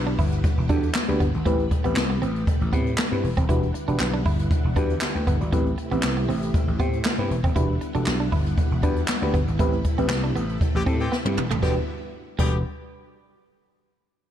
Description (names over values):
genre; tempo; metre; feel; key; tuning
early-eighties boogie funk; 118 BPM; 4/4; straight; E minor; A4 = 440 Hz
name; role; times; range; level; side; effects
mellow FM electric piano; accompaniment; 0.0-12.6 s; C4 to G5; -29 LUFS; equal; chorus, phaser
string machine, violins; sustained chords; 0.0-11.9 s; C3 to F#5; -34 LUFS; equal; ensemble chorus
vintage slap bass; bass; 0.0-12.6 s; D#1 to A2; -26 LUFS; equal; none
clean electric guitar; riff; 0.1-12.5 s; G3 to E4; -33 LUFS; right 7 dB; analog chorus
jazz brush drum kit; drums; 0.1-12.5 s; crash cymbal, handclaps, hi-hat, kick drum, snare drum, toms; -24 LUFS; equal; none
clear horn section; second line; 10.7-12.6 s; D3 to G4; -33 LUFS; left 4 dB; none
room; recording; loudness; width
light reverb; dark, warm production; -21 LUFS; side -10 dB against mid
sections
0.0-11.6 A section; 11.6-13.7 B section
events
band accent 9.6-11.6; drum fill 11.1-11.6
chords
0.0 Em9; 1.5 Am9; 3.5 Em9; 5.5 Am9; 7.6 Em9; 9.6 Am9; 11.6 Em9